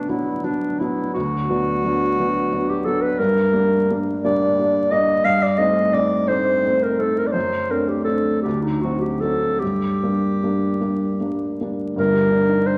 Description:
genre	classical, romantic duo for clarinet and grand piano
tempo	49-60 BPM (dotted quarters)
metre	6/8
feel	rubato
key	B minor, G minor from 3.2 s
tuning	A4 = 439 Hz
part	mellow clarinet	melody	0.0-12.8 s	D4 to F5	-23 LUFS	equal	none
part	warm grand piano	accompaniment	0.0-12.8 s	G1 to G4	-23 LUFS	equal	none
room	wet recital hall reverb, RT60 1.7 s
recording	vinyl crackle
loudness	-20 LUFS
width	mono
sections	0.0-12.0 A section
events	none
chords	0.0 Bm; 1.1 Bm/D; 3.2 Gm; 5.2 Am7b5/G; 7.4 D7/F#; 8.5 D7b9; 9.6 Gm

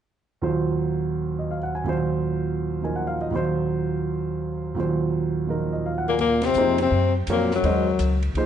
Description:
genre	modal jazz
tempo	166 BPM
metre	4/4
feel	swing 65% on 8ths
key	Eb dorian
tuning	A4 = 440 Hz
part	warm concert grand piano	accompaniment	0.4-8.5 s	Eb2 to Ab5	-24 LUFS	right 3 dB	none
part	mellow tenor saxophone	melody	6.1-8.2 s	Gb3 to C4	-22 LUFS	left 7 dB	none
part	warm trombone	second line	6.1-8.2 s	Gb2 to C3	-29 LUFS	right 4 dB	none
part	upright bass	bass	6.2-8.5 s	C2 to Gb2	-24 LUFS	left 1 dB	none
part	open jazz drum kit	drums	6.2-8.5 s	hi-hat, ride cymbal, snare drum	-36 LUFS	equal	none
room	moderate recital hall reverb, RT60 1.4 s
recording	dark, warm production, nothing above 10.4 kHz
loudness	-21 LUFS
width	side -9 dB against mid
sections	0.4-6.2 A section; 6.2-8.5 B section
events	band accent 6.4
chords	0.4 Ebm69

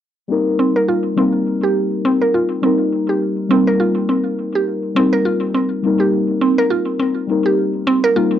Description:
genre	downtempo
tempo	103 BPM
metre	4/4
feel	swing 58% on 16ths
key	C minor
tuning	A4 = 439 Hz
part	muted felt-like synth keys	accompaniment	0.3-8.4 s	G3 to Bb4	-18 LUFS	left 3 dB	chorus, phaser, low-pass filter, tape echo
part	mallet-like synth pluck	arpeggios	0.6-8.3 s	C4 to Bb4	-17 LUFS	right 2 dB	chorus, tape echo
room	moderate studio reverb, RT60 0.6 s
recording	home recording on cassette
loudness	-15 LUFS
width	side -10 dB against mid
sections	0.3-8.4 A section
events	filter sweep on synth pluck 0.3-8.4; filter sweep on synth keys 0.3-8.4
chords	0.3 Cm7

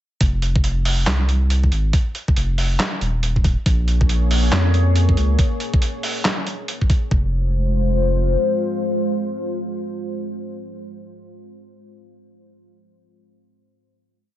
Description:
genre	deep dubstep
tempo	139 BPM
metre	4/4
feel	swing 62% on 16ths, half-time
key	F minor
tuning	A4 = 444 Hz
part	saturated sub bass	bass	0.2-8.4 s	Eb1 to F2	-18 LUFS	equal	tube saturation
part	electronic kick drum	drums	0.2-7.2 s	none	-18 LUFS	equal	overdrive
part	trip hop sampler-style drum kit	drums	0.2-7.0 s	handclaps, hi-hat, snare drum	-24 LUFS	right 1 dB	none
part	deep dark ambient pad	sustained chords	3.9-10.2 s	Ab3 to Db5	-24 LUFS	left 2 dB	chorus, built-in reverb
room	digital ambience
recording	nothing above 8.0 kHz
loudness	-17 LUFS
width	side -13 dB against mid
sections	0.2-7.1 drop; 7.1-10.6 final chord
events	drop 0.2-7.1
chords	0.2 F5; 3.7 Bbm7; 7.1 Fm

